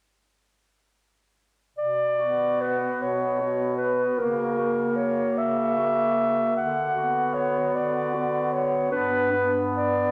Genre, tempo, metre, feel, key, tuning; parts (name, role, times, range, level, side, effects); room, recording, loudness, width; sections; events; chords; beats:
classical, lyrical piece for single-reed quartet; 50 BPM (dotted quarters); 6/8; uneven beats, rubato; B minor; A4 = 443 Hz
warm clarinet; melody; 1.8-10.1 s; A#4 to F#5; -26 LUFS; equal
bright bass clarinet; bass; 1.8-10.0 s; G2 to D3; -36 LUFS; equal
warm clarinet; second line; 2.2-10.1 s; D4 to F#4; -36 LUFS; equal
warm tenor saxophone; accompaniment; 2.2-10.1 s; A#3 to B3; -31 LUFS; equal
wet scoring stage reverb, RT60 1.9 s; -25 LUFS; mono
1.8-10.1 A section
1.8 Bm; 4.2 F#7/C#; 6.6 Bm/D; 8.9 G
| 1.77 3.02 | 4.19 5.38 | 6.57 7.73 | 8.90